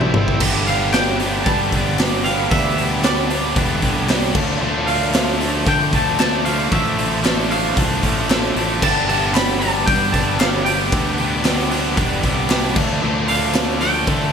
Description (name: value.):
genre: indie rock.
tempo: 114 BPM.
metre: 4/4.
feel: straight.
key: unclear.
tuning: A4 = 440 Hz.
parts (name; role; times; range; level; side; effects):
twangy electric guitar; melody; 0.0-14.3 s; D5 to B5; -23 LUFS; equal; lush chorus, ping-pong delay.
tonewheel organ; sustained chords; 0.0-14.3 s; C3 to A4; -34 LUFS; equal; none.
biting overdriven guitar; riff; 0.0-14.3 s; F3 to A4; -24 LUFS; left 8 dB; none.
overdriven electric guitar; riff; 0.0-14.3 s; G2 to C5; -23 LUFS; right 6 dB; analog chorus, ping-pong delay.
fuzz fingered electric bass; bass; 0.0-14.3 s; E1 to D3; -24 LUFS; equal; overdrive.
raw garage drum kit; drums; 0.0-14.2 s; crash cymbal, hi-hat, kick drum, snare drum, toms; -20 LUFS; equal; gated reverb.
group handclap; percussion; 0.9-13.7 s; none; -31 LUFS; left 7 dB; none.
room: moderate plate reverb, RT60 1.9 s, small room ambience.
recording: bright 1980s-style digital production.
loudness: -15 LUFS.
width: side -7 dB against mid.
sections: 0.4-14.3 A section.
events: drum fill 0.0-0.4.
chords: 0.4 Gadd9; 4.4 Dm; 8.8 Gadd9; 12.8 Dmadd9.